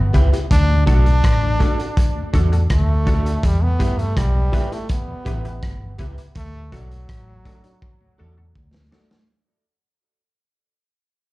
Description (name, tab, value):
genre	roots reggae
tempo	82 BPM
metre	4/4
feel	straight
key	unclear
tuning	A4 = 444 Hz
part	brilliant trombone	melody	0.0-8.2 s	F#3 to D4	-26 LUFS	equal	tape echo
part	mellow tonewheel organ	accompaniment	0.0-9.2 s	D2 to G4	-30 LUFS	left 1 dB	slow rotary speaker, slapback echo
part	vintage muted fingered electric bass	bass	0.0-8.9 s	G1 to G2	-18 LUFS	equal	none
part	electric guitar at the edge of break-up	accompaniment	0.1-9.1 s	F#4 to E5	-34 LUFS	right 4 dB	tape echo, plate reverb, slapback echo
part	filtered dub chord stab	stabs	0.1-9.2 s	D4 to B4	-33 LUFS	left 4 dB	chorus, plate reverb, slapback echo
part	crunchy breakbeat drum kit	drums	0.1-9.3 s	hi-hat, kick drum, rim click, snare drum	-20 LUFS	equal	none
room	little or no reverb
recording	live gig heard through the venue's PA, club reverb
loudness	-16 LUFS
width	side -20 dB against mid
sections	0.0-9.3 A section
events	fade-out 0.0-9.3; drum fill 7.8-9.3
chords	0.5 D; 3.4 Em; 6.4 D